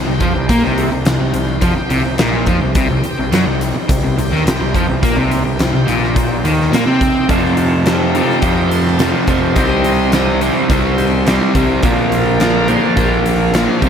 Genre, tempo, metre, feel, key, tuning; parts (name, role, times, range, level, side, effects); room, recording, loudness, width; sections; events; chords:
classic rock; 106 BPM; 4/4; straight; C dorian; A4 = 440 Hz
bright tonewheel organ; sustained chords; 0.0-13.9 s; D3 to G5; -22 LUFS; equal; slow rotary speaker, overdrive
crunchy overdriven guitar; riff; 0.0-13.9 s; F2 to C4; -18 LUFS; left 8 dB; slapback echo
crunchy overdriven guitar; riff; 0.0-13.9 s; F2 to C4; -18 LUFS; right 8 dB
fuzz picked electric bass; bass; 0.0-13.9 s; Bb1 to C3; -20 LUFS; equal; overdrive
huge arena drum kit; drums; 0.2-13.9 s; hi-hat, kick drum, snare drum; -18 LUFS; equal
moderate lush hall reverb, RT60 1.9 s, studio reverb; big arena sound; -12 LUFS; side -8 dB against mid
0.0-7.3 A section; 7.3-13.9 B section
tonewheel organ solo 7.3-13.9
0.0 Cm; 7.3 F; 9.6 Cm; 11.8 Bb